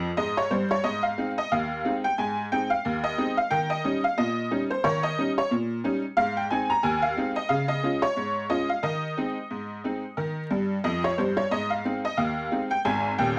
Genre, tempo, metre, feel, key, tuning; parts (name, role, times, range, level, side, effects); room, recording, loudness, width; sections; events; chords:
ragtime piano; 90 BPM; 2/4; swing 57% on 16ths; Ab major; A4 = 440 Hz
tack piano; solo; 0.0-13.4 s; Eb1 to Bb5; -26 LUFS; equal
wet studio ambience, RT60 0.5 s; vinyl crackle; -26 LUFS; mono
0.8-13.4 A section
honky-tonk piano fill 0.0-0.8, 10.5-11.5
0.0 Eb; 0.8 Ab; 3.5 Eb7; 6.2 Ab; 7.5 Db; 8.8 Ab/Eb; 10.2 Eb; 11.5 Ab